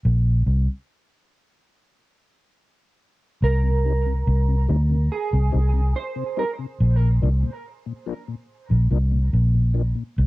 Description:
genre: reggae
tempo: 71 BPM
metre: 4/4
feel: straight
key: unclear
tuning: A4 = 443 Hz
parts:
  - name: vintage muted fingered electric bass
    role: bass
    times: 0.1-10.3 s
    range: Bb1 to D2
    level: -18 LUFS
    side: equal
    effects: none
  - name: mellow electric guitar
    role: melody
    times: 3.4-6.5 s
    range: Ab4 to C5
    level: -29 LUFS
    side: right 5 dB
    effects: analog chorus, cassette tape, dub echo
  - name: mellow tonewheel organ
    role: accompaniment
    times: 3.6-10.0 s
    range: Bb2 to Eb4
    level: -32 LUFS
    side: left 7 dB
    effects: chorus vibrato, slow rotary speaker, cassette tape
room: little or no reverb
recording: home recording on cassette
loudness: -19 LUFS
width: side -20 dB against mid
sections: 0.0-3.4 A section; 3.4-10.3 B section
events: break 1.7-3.4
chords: 0.0 Bbsus2; 3.4 Cm; 6.8 Bb

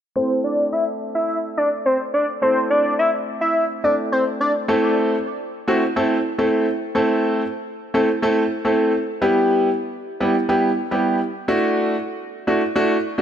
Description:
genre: pop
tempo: 106 BPM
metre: 4/4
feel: straight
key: A dorian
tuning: A4 = 440 Hz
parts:
  - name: fat analog lead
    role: melody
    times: 0.2-4.5 s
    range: C5 to E5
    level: -19 LUFS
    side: equal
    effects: low-pass filter, ping-pong delay
  - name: clear grand piano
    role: accompaniment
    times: 0.2-13.2 s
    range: G3 to A4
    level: -19 LUFS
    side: equal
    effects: low-pass filter
room: moderate lush hall reverb, RT60 2.5 s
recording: none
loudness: -18 LUFS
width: side -9 dB against mid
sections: 0.2-4.7 A section; 4.7-13.2 B section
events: filter sweep 0.2-4.7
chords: 0.2 Am; 9.2 Em; 11.5 Dadd9

